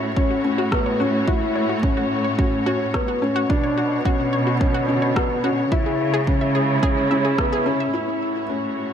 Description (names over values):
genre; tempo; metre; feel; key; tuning
piano and strings electronica; 108 BPM; 4/4; straight; A major; A4 = 439 Hz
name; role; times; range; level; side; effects
muted studio string section; sustained chords; 0.0-8.9 s; A2 to C#5; -26 LUFS; right 2 dB; sidechain pumping
wide unison pluck; arpeggios; 0.0-7.9 s; F#4 to E5; -28 LUFS; left 1 dB; sidechain pumping, ping-pong delay
felt-muted upright piano; riff; 0.0-8.9 s; B3 to E4; -22 LUFS; left 2 dB; ping-pong delay
warm chamber cello section; bass; 0.0-8.9 s; A2 to C#3; -27 LUFS; right 1 dB; sidechain pumping
electronic kick drum; drums; 0.2-7.5 s; none; -23 LUFS; right 1 dB; overdrive
electronic rim click; drums; 0.7-7.5 s; none; -30 LUFS; equal; overdrive, low-pass filter on snare, low-pass filter on room
room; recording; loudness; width
light reverb, small room ambience; none; -18 LUFS; side -8 dB against mid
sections
0.0-7.9 A section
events
filter sweep on synth arpeggio sound 0.0-7.9; band accent 7.4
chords
0.0 A6; 3.5 Bmadd9; 5.7 C#m; 7.9 A6